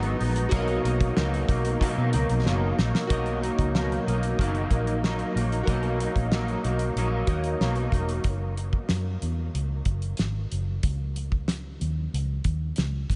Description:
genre	indie pop, bedroom pop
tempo	93 BPM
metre	4/4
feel	straight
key	B major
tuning	A4 = 440 Hz
part	chorused retro synth keys	accompaniment	0.0-8.3 s	F#4 to D#5	-36 LUFS	equal	none
part	electric guitar at the edge of break-up	accompaniment	0.0-8.3 s	G#2 to D#4	-34 LUFS	equal	ensemble chorus, warbly pitch drift
part	soft string machine	sustained chords	0.0-8.2 s	B2 to F#4	-36 LUFS	equal	ensemble chorus
part	vintage muted fingered electric bass	bass	0.0-13.2 s	E1 to B2	-30 LUFS	equal	none
part	damped 70s drum kit	drums	0.0-13.2 s	hi-hat, kick drum, snare drum	-32 LUFS	equal	none
room	moderate huge ambient reverb, RT60 8.9 s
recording	dreamy mix soaked in reverb, nothing above 10.6 kHz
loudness	-26 LUFS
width	mono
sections	0.0-3.1 A section; 3.1-8.3 B section; 8.3-13.2 C section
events	drum fill 2.5-3.1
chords	0.0 G#m7; 0.5 Bmaj7; 8.3 N.C.; 10.8 C#sus2

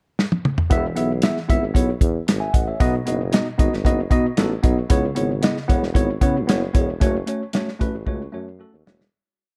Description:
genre	uptempo 1960s-style soul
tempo	114 BPM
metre	4/4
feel	straight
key	E major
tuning	A4 = 440 Hz
part	warm soul drum kit	drums	0.2-9.1 s	hi-hat, kick drum, snare drum, toms	-22 LUFS	equal	none
part	mellow tine electric piano	accompaniment	0.7-9.0 s	B2 to G#5	-26 LUFS	equal	none
part	breathy tuba	bass	0.7-9.1 s	E1 to C#3	-27 LUFS	equal	none
room	light reverb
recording	dark, warm production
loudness	-20 LUFS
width	mono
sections	0.0-0.7 pickup bar; 0.7-9.1 verse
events	drum fill 0.2-0.7, 8.1-9.1; fade-out 7.0-9.1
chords	0.0 N.C.; 0.7 E; 2.8 B; 4.9 C#m7; 7.0 F#m

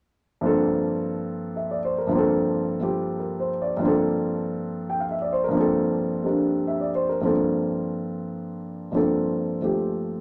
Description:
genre	jazz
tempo	141 BPM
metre	4/4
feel	swing 65% on 8ths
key	G minor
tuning	A4 = 439 Hz
part	warm grand piano	solo	0.4-10.2 s	G2 to G5	-25 LUFS	equal	none
room	wet studio reverb, RT60 0.6 s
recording	none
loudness	-25 LUFS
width	mono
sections	0.4-10.2 A section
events	none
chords	0.4 Gm11

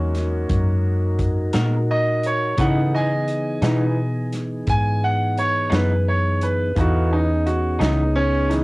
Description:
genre	slow blues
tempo	57 BPM (dotted quarters)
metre	12/8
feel	straight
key	unclear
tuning	A4 = 440 Hz
part	bright concert grand piano	accompaniment	0.0-8.6 s	E3 to G#5	-23 LUFS	right 1 dB	cassette tape
part	mellow tonewheel organ	sustained chords	0.0-8.6 s	E3 to E#5	-27 LUFS	left 1 dB	slow rotary speaker, cassette tape
part	vintage muted fingered electric bass	bass	0.0-8.6 s	C#2 to C#3	-21 LUFS	equal	transformer saturation
part	vintage drum kit	drums	0.1-8.6 s	hi-hat, kick drum, snare drum	-25 LUFS	equal	cassette tape
part	electric guitar through a small old amp	accompaniment	1.5-8.0 s	C#3 to A#4	-26 LUFS	left 2 dB	harmonic tremolo, cassette tape
room	light reverb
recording	home recording on cassette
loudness	-18 LUFS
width	side -22 dB against mid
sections	0.0-8.6 A section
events	grand piano solo 0.0-8.6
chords	0.0 G#7sus2; 2.6 C#m9

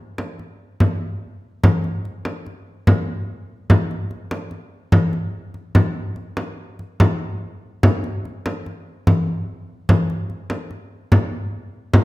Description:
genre	contemporary instrumental, contemporary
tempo	146 BPM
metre	5/4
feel	straight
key	none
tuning	none
part	frame drum	percussion	0.2-12.0 s	none	-17 LUFS	equal	none
room	wet recital hall reverb, RT60 1.5 s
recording	none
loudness	-18 LUFS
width	side -19 dB against mid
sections	0.0-12.0 A section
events	none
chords	none

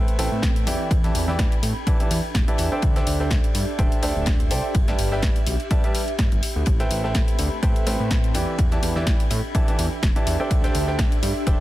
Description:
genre	piano house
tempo	125 BPM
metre	4/4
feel	swing 55% on 16ths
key	unclear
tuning	A4 = 439 Hz
part	clear baby grand piano	riff	0.0-11.6 s	E3 to A5	-28 LUFS	right 1 dB	sidechain pumping, low-pass filter, tape echo
part	fat analog bass	bass	0.0-11.6 s	D1 to A2	-26 LUFS	equal	sidechain pumping
part	ethereal airy pad	texture	0.1-11.6 s	C4 to C6	-31 LUFS	right 1 dB	ensemble chorus, built-in reverb, sidechain pumping
part	house drum kit	drums	0.1-11.6 s	hi-hat, snare drum	-30 LUFS	left 1 dB	small room ambience
part	warm soul drum kit	drums	0.2-11.6 s	ride cymbal, snare drum	-38 LUFS	left 4 dB	sidechain pumping on cymbals, high-pass filter on cymbals, small room ambience, high-pass filter on snare, high-pass filter on room
part	electronic kick drum	drums	0.4-11.6 s	none	-21 LUFS	equal	small room ambience
room	small room ambience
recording	dense, heavily limited modern master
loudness	-19 LUFS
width	side -16 dB against mid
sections	0.0-11.6 A section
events	none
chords	0.0 Am9; 0.7 Em7; 2.8 D9sus4; 4.7 G6; 6.7 Am9; 8.3 Em7; 10.5 D9sus4

